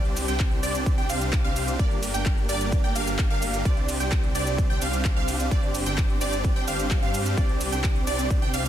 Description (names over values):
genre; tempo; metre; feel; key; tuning
EDM, festival progressive house; 129 BPM; 4/4; straight; unclear; A4 = 437 Hz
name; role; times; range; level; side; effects
dark symphonic string section; sustained chords; 0.0-8.7 s; C3 to G4; -34 LUFS; equal; sidechain pumping
wide unison pluck; arpeggios; 0.0-8.7 s; D5 to G5; -31 LUFS; right 2 dB; phaser, sidechain pumping, digital delay
supersaw chords; riff; 0.0-8.7 s; Bb3 to G5; -30 LUFS; right 1 dB; sidechain pumping, digital delay
wide detuned saw bass; bass; 0.0-8.7 s; G1 to G2; -30 LUFS; equal; chorus, sidechain pumping
big-room dance drum kit; drums; 0.1-8.7 s; handclaps, hi-hat, ride cymbal, shaker; -33 LUFS; equal; none
electronic kick drum; drums; 0.4-8.4 s; none; -24 LUFS; equal; none
room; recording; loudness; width
little or no reverb; dense, heavily limited modern master; -22 LUFS; side -11 dB against mid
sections
0.0-8.7 A section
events
none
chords
0.0 Csus2; 1.8 Gm; 3.7 Csus2; 5.5 Gsus4; 7.4 Csus2